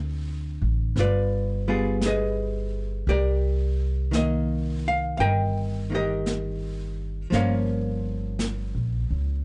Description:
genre	jazz ballad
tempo	56 BPM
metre	4/4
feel	swing 68% on 8ths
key	unclear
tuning	A4 = 444 Hz
part	archtop guitar, miked and amplified	accompaniment	0.0-9.4 s	D3 to G5	-30 LUFS	equal	none
part	upright bass	bass	0.0-9.4 s	G1 to D2	-28 LUFS	equal	none
part	jazz brush drum kit	drums	1.0-9.4 s	brushed snare drum, hi-hat, snare drum	-35 LUFS	equal	none
room	little or no reverb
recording	dark, warm production, nothing above 10.6 kHz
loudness	-26 LUFS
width	mono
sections	0.0-9.4 A section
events	none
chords	0.0 Dm7; 1.0 G7b9; 3.1 Cm9; 7.3 Gm7b5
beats	0.95 2.01 | 3.07 4.13 5.20 6.26 | 7.32 8.39

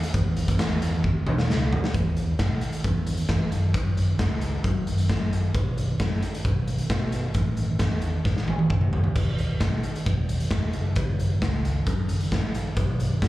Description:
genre	classic rock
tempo	133 BPM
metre	4/4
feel	straight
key	unclear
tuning	A4 = 440 Hz
part	picked electric bass	bass	0.0-13.3 s	E1 to F#3	-26 LUFS	equal	none
part	raw garage drum kit	drums	0.0-13.3 s	crash cymbal, hi-hat, kick drum, snare drum, toms	-24 LUFS	equal	none
room	light reverb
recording	live gig heard through the venue's PA, club reverb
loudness	-22 LUFS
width	side -16 dB against mid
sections	0.0-1.9 A section; 1.9-13.3 B section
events	drum fill 1.0-1.9, 8.3-9.2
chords	none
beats	| 0.15 0.60 1.05 1.50 | 1.95 2.40 2.85 3.30 | 3.75 4.20 4.65 5.10 | 5.55 6.00 6.45 6.91 | 7.36 7.81 8.26 8.71 | 9.16 9.61 10.07 10.52 | 10.97 11.42 11.87 12.32 | 12.77 13.22

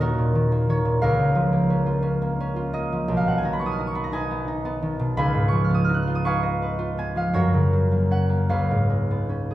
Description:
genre	classical, solo harp piece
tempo	57 BPM (dotted quarters)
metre	6/8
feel	uneven beats, rubato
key	unclear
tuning	A4 = 443 Hz
part	concert harp	solo	0.0-9.5 s	B1 to F#6	-20 LUFS	equal	none
room	wet recital hall reverb, RT60 1.5 s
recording	heard from further back in the room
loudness	-20 LUFS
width	side -14 dB against mid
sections	0.0-9.5 A section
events	none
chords	0.0 D#m7; 1.0 A#m/C#; 3.1 G#m/B; 5.2 C#9; 7.3 F#; 8.5 C#7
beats	| 1.01 2.06 | 3.10 4.15 | 5.18 6.23 | 7.32 8.47

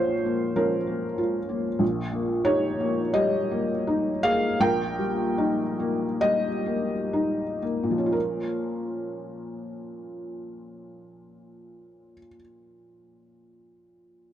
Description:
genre	neoclassical minimalist piano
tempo	58-96 BPM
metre	4/4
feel	rubato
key	Bb minor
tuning	A4 = 440 Hz
part	felt-muted upright piano	solo	0.0-14.3 s	Bb1 to G5	-24 LUFS	equal	none
room	light reverb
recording	dark, warm production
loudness	-23 LUFS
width	side -11 dB against mid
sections	0.0-8.1 A section; 8.1-12.2 B section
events	slowing down 0.6-8.1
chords	0.0 Bbmadd9; 1.8 Eb/Bb; 8.1 Bbm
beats	0.56 1.18 | 1.81 2.47 3.14 3.86 | 4.60 5.36 6.20 7.12 | 8.13 9.14 10.14 11.14

